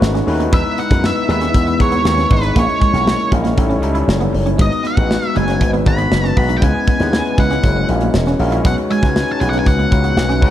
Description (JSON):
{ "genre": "polished 1980s jazz-funk pop", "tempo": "118 BPM", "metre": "4/4", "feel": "straight", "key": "unclear", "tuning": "A4 = 440 Hz", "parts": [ { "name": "overdriven tine electric piano", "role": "accompaniment", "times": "0.0-10.5 s", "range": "G3 to E5", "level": "-19 LUFS", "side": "left 3 dB", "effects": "analog chorus" }, { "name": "slap bass with an envelope filter", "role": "bass", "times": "0.0-10.5 s", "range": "E1 to F#2", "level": "-18 LUFS", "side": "equal", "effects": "none" }, { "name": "modern studio drum kit", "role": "drums", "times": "0.0-10.5 s", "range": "hi-hat, kick drum, snare drum", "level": "-17 LUFS", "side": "equal", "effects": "none" }, { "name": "clean electric guitar", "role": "riff", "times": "0.1-10.5 s", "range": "F#3 to E4", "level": "-24 LUFS", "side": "right 4 dB", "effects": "analog chorus" }, { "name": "octave-fuzz lead guitar", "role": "melody", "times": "0.5-10.5 s", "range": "B4 to B5", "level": "-21 LUFS", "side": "right 1 dB", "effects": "distortion" } ], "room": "light reverb, small room ambience", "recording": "dark, warm production", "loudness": "-13 LUFS", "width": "side -12 dB against mid", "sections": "0.0-10.5 A section", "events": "none", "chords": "0.0 B9; 0.5 Emaj7; 2.6 A#m7b5; 3.6 A7#11; 4.6 G#m7; 6.6 C#m7; 7.6 F#9; 8.6 B69" }